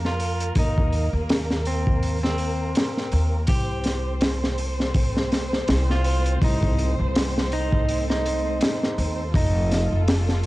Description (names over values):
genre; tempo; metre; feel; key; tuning
trip hop; 82 BPM; 4/4; swing 58% on 16ths; unclear; A4 = 442 Hz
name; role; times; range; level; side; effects
muted chamber violin section; sustained chords; 0.0-10.5 s; Bb3 to C5; -31 LUFS; equal; cassette tape
upright bass; bass; 0.0-10.5 s; F1 to F2; -24 LUFS; equal; none
crunchy breakbeat drum kit; drums; 0.0-10.5 s; hi-hat, kick drum, snare drum; -23 LUFS; equal; cassette tape
electric guitar at the edge of break-up; melody; 0.1-10.0 s; C4 to G4; -29 LUFS; right 1 dB; cassette tape, tape echo
flickering grainy texture; texture; 4.1-10.5 s; A3 to A4; -37 LUFS; left 1 dB; built-in reverb, cassette tape
room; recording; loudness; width
little or no reverb; home recording on cassette; -20 LUFS; side -18 dB against mid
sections
0.0-10.5 A section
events
none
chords
0.0 Eb5; 3.5 Cm; 9.3 F7